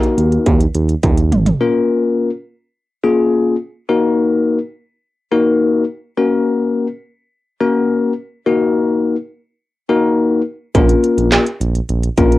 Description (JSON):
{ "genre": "synth-pop", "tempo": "105 BPM", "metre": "4/4", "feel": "straight", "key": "Eb minor", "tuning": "A4 = 445 Hz", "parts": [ { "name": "bell-like tine electric piano", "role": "accompaniment", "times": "0.0-12.4 s", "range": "Bb3 to Bb4", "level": "-14 LUFS", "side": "left 3 dB", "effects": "wide subtle chorus" }, { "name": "industrial drum kit", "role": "drums", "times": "0.0-1.6, 10.7-12.4 s", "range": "handclaps, hi-hat, kick drum, snare drum, toms", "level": "-15 LUFS", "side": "right 1 dB", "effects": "distortion, cassette tape" }, { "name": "smooth synth bass", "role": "bass", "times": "0.2-1.5, 10.7-12.4 s", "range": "Ab1 to Eb2", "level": "-16 LUFS", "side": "right 1 dB", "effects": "none" } ], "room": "moderate studio ambience, RT60 0.5 s", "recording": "home recording on cassette", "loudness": "-13 LUFS", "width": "side -16 dB against mid", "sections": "0.0-1.6 A section; 1.6-12.4 B section", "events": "drum fill 1.0-1.6", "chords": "0.0 Ebm; 1.6 Bbm; 3.9 Ebm; 6.2 Gb; 8.5 Ebm; 10.7 Bbm" }